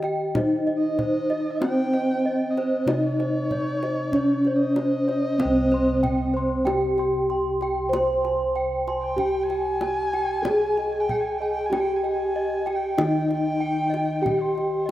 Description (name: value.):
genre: Javanese gamelan.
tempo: 48 BPM.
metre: 4/4.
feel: straight.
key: C pelog.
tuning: A4 = 440 Hz.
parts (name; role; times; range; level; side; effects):
gamelan-type bronze metallophone; melody; 0.0-14.9 s; C4 to C5; -23 LUFS; equal; none.
gamelan-type bossed gongs; arpeggios; 0.0-14.9 s; C5 to C6; -33 LUFS; left 1 dB; none.
gamelan-type bronze metallophone; arpeggios; 0.0-14.9 s; C5 to C6; -29 LUFS; right 2 dB; none.
gamelan-type bossed gongs; bass; 0.0-14.9 s; C2 to Ab4; -31 LUFS; equal; none.
kendang; percussion; 0.0-14.9 s; none; -32 LUFS; left 1 dB; none.
dark erhu; second line; 0.8-14.9 s; C5 to Ab5; -32 LUFS; equal; none.
room: wet lush hall reverb, RT60 2.1 s.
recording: rough home demo mix.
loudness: -21 LUFS.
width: side -14 dB against mid.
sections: 0.0-14.9 A section.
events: none.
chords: none.